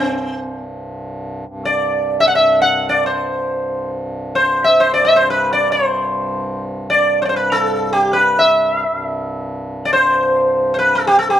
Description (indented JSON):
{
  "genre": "indian classical, Hindustani",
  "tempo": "free time",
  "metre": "none",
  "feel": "none",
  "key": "C raga yaman",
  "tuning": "A4 = 438 Hz",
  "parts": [
    { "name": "sitar", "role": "melody", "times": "0.0-11.4 s", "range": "C4 to F#5", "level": "-14 LUFS", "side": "equal", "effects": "none" },
    { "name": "hand-pumped harmonium", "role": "drone", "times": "0.0-11.4 s", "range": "C2 to G2", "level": "-27 LUFS", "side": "equal", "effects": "none" }
  ],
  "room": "little or no reverb",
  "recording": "recorded outdoors, with no room sound",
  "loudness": "-14 LUFS",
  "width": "side -11 dB against mid",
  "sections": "0.0-1.5 A section; 1.5-11.4 A section",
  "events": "none",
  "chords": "none"
}